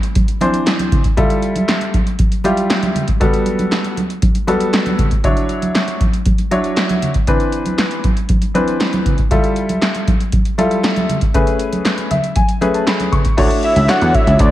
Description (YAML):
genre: early-eighties boogie funk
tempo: 118 BPM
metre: 4/4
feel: straight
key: unclear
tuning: A4 = 440 Hz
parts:
  - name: electro analog drum machine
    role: drums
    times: 0.0-14.5 s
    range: crash cymbal, handclaps, hi-hat, kick drum, snare drum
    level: -16 LUFS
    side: equal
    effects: gated reverb
  - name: congas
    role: percussion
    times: 0.2-13.2 s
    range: none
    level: -22 LUFS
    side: right 2 dB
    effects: none
  - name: bright grand piano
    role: accompaniment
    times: 0.4-14.5 s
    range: E3 to C#6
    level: -18 LUFS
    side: left 1 dB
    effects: none
  - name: dark studio string section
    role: sustained chords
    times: 13.4-14.5 s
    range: D3 to E5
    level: -24 LUFS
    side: equal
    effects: none
  - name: gritty slap bass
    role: bass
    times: 13.4-14.5 s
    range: C#2 to E2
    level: -14 LUFS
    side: equal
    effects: overdrive
  - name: fat analog lead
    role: melody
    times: 13.6-14.5 s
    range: D5 to F#5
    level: -15 LUFS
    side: equal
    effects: none
room: light reverb, small room ambience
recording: none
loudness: -13 LUFS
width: side -14 dB against mid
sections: 0.0-13.4 A section; 13.4-14.5 B section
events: grand piano fill 11.9-13.4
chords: 0.0 Cadd9; 1.2 Fmaj9; 3.2 Gmaj9; 5.2 Dmaj9; 7.3 Cmaj9; 9.3 Fmaj9; 11.3 Amaj9; 13.4 Dmaj9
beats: 0.16 0.67 | 1.18 1.68 2.19 2.70 | 3.21 3.72 4.23 4.74 | 5.24 5.75 6.26 6.77 | 7.28 7.79 8.29 8.80 | 9.31 9.82 10.33 10.84 | 11.35 11.85 12.36 12.87 | 13.38 13.89 14.40